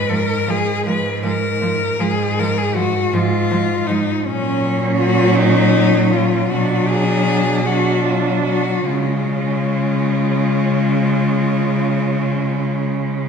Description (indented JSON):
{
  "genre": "classical, lyrical piece for cello ensemble",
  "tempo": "47-55 BPM (dotted quarters)",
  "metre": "12/8",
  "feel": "rubato",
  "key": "unclear",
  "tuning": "A4 = 437 Hz",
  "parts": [
    { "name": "rich cello", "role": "melody", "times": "0.0-13.3 s", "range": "C#4 to B4", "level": "-21 LUFS", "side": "left 5 dB", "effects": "none" },
    { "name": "rich cello", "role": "bass", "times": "0.0-13.3 s", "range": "G#2 to C#3", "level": "-20 LUFS", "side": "right 3 dB", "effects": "none" },
    { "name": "rich cello", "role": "second line", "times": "0.1-13.3 s", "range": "G#3 to D4", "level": "-23 LUFS", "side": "right 6 dB", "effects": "none" },
    { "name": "rich cello", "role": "accompaniment", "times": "0.1-13.3 s", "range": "E#3 to G#3", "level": "-21 LUFS", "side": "left 4 dB", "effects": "none" }
  ],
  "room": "wet concert hall reverb, RT60 2.1 s",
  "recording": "minimal, uncompressed stereo recording",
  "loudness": "-15 LUFS",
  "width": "side -6 dB against mid",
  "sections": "0.0-13.3 A section",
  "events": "none",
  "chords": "0.0 G#sus2; 4.2 F#/A#; 6.5 Bm; 8.9 C#"
}